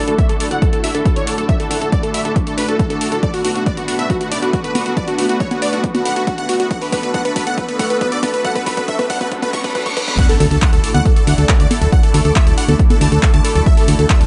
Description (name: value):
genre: uplifting trance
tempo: 138 BPM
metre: 4/4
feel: straight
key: D major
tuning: A4 = 440 Hz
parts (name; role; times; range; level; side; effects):
- supersaw chords; melody; 0.0-14.3 s; F#4 to C#6; -22 LUFS; equal; sidechain pumping, low-pass filter, tape echo
- lush unison pad; sustained chords; 0.0-14.3 s; A3 to D5; -25 LUFS; equal; chorus, phaser, sidechain pumping
- solid FM bass; bass; 0.0-14.3 s; D1 to D2; -21 LUFS; equal; sidechain pumping, high-pass filter
- punchy analog drum machine; drums; 0.1-14.3 s; congas, crash cymbal, handclaps, hi-hat; -26 LUFS; equal; none
- electronic kick drum; drums; 0.2-14.2 s; none; -18 LUFS; equal; none
- riser, reverse cymbal and impact; sound effects; 7.7-11.9 s; none; -30 LUFS; equal; none
room: light reverb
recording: dark, warm production, high-pass filter, nothing above 10.7 kHz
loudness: -16 LUFS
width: mono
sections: 0.0-10.2 A section; 10.2-14.3 B section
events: build-up 0.0-10.2; filter sweep 0.0-10.2; drum fill 3.2-10.2; reverse cymbal 9.3-10.2; drop 10.2-14.3; impact 10.2-11.9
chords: 0.0 Dadd9; 3.2 Bm7; 10.2 Dadd9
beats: 0.18 0.62 1.05 | 1.49 1.92 2.36 2.79 | 3.23 3.66 4.10 4.53 | 4.97 5.40 5.84 6.27 | 6.71 7.14 7.58 8.01 | 8.45 8.88 9.32 9.75 | 10.19 10.62 11.05 11.49 | 11.92 12.36 12.79 13.23 | 13.66 14.10